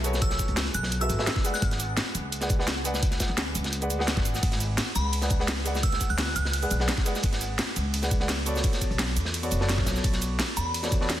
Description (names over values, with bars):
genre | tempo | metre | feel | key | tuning
liquid drum and bass | 171 BPM | 4/4 | straight | unclear | A4 = 440 Hz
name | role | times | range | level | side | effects
felt-muted upright piano | accompaniment | 0.0-11.1 s | F#3 to F#5 | -32 LUFS | equal | ping-pong delay
upright bass | bass | 0.0-11.2 s | F#1 to E2 | -29 LUFS | equal | none
crunchy breakbeat drum kit | drums | 0.0-11.2 s | hi-hat, snare drum | -34 LUFS | equal | high-pass filter on hats, high-pass filter on snare, high-pass filter on room
drum and bass drum kit | drums | 0.0-11.2 s | cabasa, hi-hat, ride cymbal, snare drum | -30 LUFS | right 1 dB | overdrive
glassy synth bell | melody | 0.2-1.7, 5.0-6.9, 10.6-10.8 s | B5 to F#6 | -33 LUFS | equal | chorus, phaser, ping-pong delay
electronic kick drum | drums | 0.2-11.0 s | none | -26 LUFS | equal | overdrive
room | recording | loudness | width
light reverb, small room ambience | dense, heavily limited modern master | -24 LUFS | side -12 dB against mid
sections
0.0-11.2 A section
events
none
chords
0.0 F#m11; 1.6 G#m7b5; 8.6 Bm9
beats
| 0.22 0.57 0.92 1.27 | 1.62 1.97 2.32 2.67 | 3.03 3.38 3.73 4.08 | 4.43 4.78 5.13 5.48 | 5.83 6.18 6.54 6.89 | 7.24 7.59 7.94 8.29 | 8.64 8.99 9.34 9.69 | 10.04 10.39 10.74 11.10